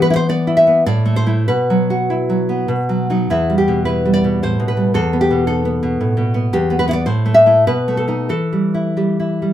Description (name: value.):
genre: romantic piece for solo classical guitar.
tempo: 88-117 BPM.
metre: 3/4.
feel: rubato.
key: E minor.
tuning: A4 = 440 Hz.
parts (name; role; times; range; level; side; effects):
nylon-string guitar; solo; 0.0-9.5 s; E2 to E5; -14 LUFS; equal; none.
room: wet studio ambience, RT60 0.5 s.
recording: band playing live in one room.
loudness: -14 LUFS.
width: side -11 dB against mid.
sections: 0.0-9.5 A section.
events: none.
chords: 0.0 E5; 0.9 Am; 1.5 Bsus4; 2.7 B; 3.3 Em; 5.0 B7/E; 6.5 Em; 7.1 Am; 7.7 B7; 8.3 Em.